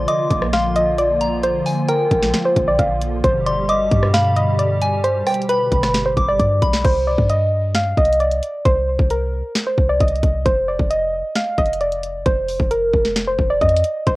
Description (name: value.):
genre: hip hop, trap.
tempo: 133 BPM.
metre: 4/4.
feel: half-time.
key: C minor.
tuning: A4 = 440 Hz.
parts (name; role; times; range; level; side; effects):
soft round pluck; melody; 0.0-14.2 s; Bb4 to F5; -18 LUFS; equal; chorus, cassette tape.
soft synth bell; second line; 0.0-6.8 s; G5 to D6; -25 LUFS; equal; chorus, phaser, analog delay.
hollow soft pad; sustained chords; 0.0-6.8 s; B2 to G4; -24 LUFS; equal; ensemble chorus.
clean 808-style bass; bass; 0.0-14.2 s; F1 to G2; -22 LUFS; equal; none.
trap drum kit; drums; 0.1-14.2 s; crash cymbal, hi-hat, kick drum, rim click, snare drum; -20 LUFS; equal; cassette tape.
room: light reverb.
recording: home recording on cassette.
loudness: -15 LUFS.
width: side -19 dB against mid.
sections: 0.0-6.8 A section; 6.8-14.2 B section.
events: drum fill 6.4-6.8.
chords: 0.0 Bb; 3.2 G; 6.8 Cm; 10.5 F5.